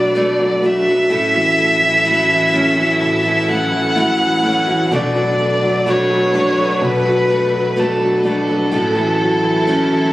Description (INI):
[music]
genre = pop ballad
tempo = 63 BPM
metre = 4/4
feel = straight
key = B minor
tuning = A4 = 439 Hz
[part]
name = warm violin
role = melody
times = 0.0-10.1 s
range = A4 to F#5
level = -16 LUFS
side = equal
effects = none
[part]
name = clear concert grand piano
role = accompaniment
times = 0.0-10.1 s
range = A2 to A4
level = -17 LUFS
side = left 1 dB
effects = none
[part]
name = clear studio string section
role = sustained chords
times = 0.0-10.1 s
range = A2 to B4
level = -26 LUFS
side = equal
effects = none
[part]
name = picked steel-string acoustic guitar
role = arpeggios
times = 0.0-10.1 s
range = B2 to A4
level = -22 LUFS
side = right 1 dB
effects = none
[sound]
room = moderate recital hall reverb, RT60 1.6 s, small room ambience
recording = recorded on a phone in the room, studio ambience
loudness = -13 LUFS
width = side -16 dB against mid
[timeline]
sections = 0.0-10.1 A section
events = none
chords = 0.0 Bm7; 1.1 F#m7/A; 4.9 Bm7; 8.7 F#m7/A